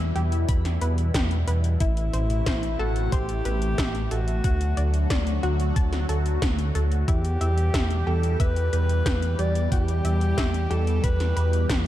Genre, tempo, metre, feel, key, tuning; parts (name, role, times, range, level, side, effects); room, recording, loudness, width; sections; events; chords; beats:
synthwave; 91 BPM; 4/4; straight; E minor; A4 = 438 Hz
phased analog pad; sustained chords; 0.0-11.9 s; B2 to G4; -32 LUFS; left 1 dB; phaser, chorus, sidechain pumping
analog pluck; arpeggios; 0.0-11.9 s; E4 to B5; -34 LUFS; left 2 dB; chorus, ping-pong delay
dark detuned saw bass; bass; 0.0-11.9 s; A1 to E2; -24 LUFS; equal; tube saturation, sidechain pumping
80s electronic pad drums; drums; 0.2-11.8 s; hi-hat, snare drum; -32 LUFS; equal; overdrive
electronic kick drum; drums; 0.5-11.8 s; -25 LUFS; equal
breathy alto saxophone; melody; 1.8-11.8 s; E4 to D5; -31 LUFS; left 1 dB; ping-pong delay
light reverb; dark, warm production; -21 LUFS; side -13 dB against mid
0.0-11.9 A section
0.0 Em; 1.8 Amadd9; 4.4 D; 7.1 Em
0.49 1.15 | 1.81 2.46 3.12 3.78 | 4.44 5.10 5.76 6.42 | 7.08 7.74 8.40 9.06 | 9.72 10.38 11.04 11.70